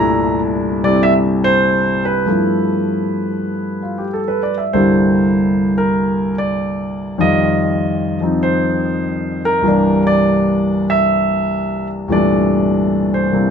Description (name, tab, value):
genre	solo jazz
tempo	98 BPM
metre	4/4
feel	swing 67% on 8ths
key	C mixolydian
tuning	A4 = 440 Hz
part	warm concert grand piano	solo	0.0-13.5 s	C2 to Bb5	-14 LUFS	equal	none
room	moderate studio reverb, RT60 0.6 s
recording	none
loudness	-14 LUFS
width	side -7 dB against mid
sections	0.0-4.7 A section; 4.7-13.5 B section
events	grand piano solo 4.7-13.5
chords	0.0 C13; 2.3 G13; 4.7 C9; 7.2 Fsus2; 9.6 C13